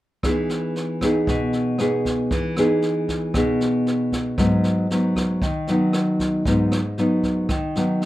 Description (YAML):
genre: bossa nova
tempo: 116 BPM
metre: 4/4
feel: straight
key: E major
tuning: A4 = 440 Hz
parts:
  - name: nylon-string guitar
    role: accompaniment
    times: 0.2-8.1 s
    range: G#2 to G#4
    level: -19 LUFS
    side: equal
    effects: none
  - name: jazz brush drum kit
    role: drums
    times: 0.2-8.1 s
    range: kick drum, rim click, snare drum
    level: -28 LUFS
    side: right 1 dB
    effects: none
room: wet small room reverb, RT60 0.5 s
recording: dark, warm production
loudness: -19 LUFS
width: side -15 dB against mid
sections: 0.2-8.1 A section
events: none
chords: 0.2 Emaj7; 4.4 G#m7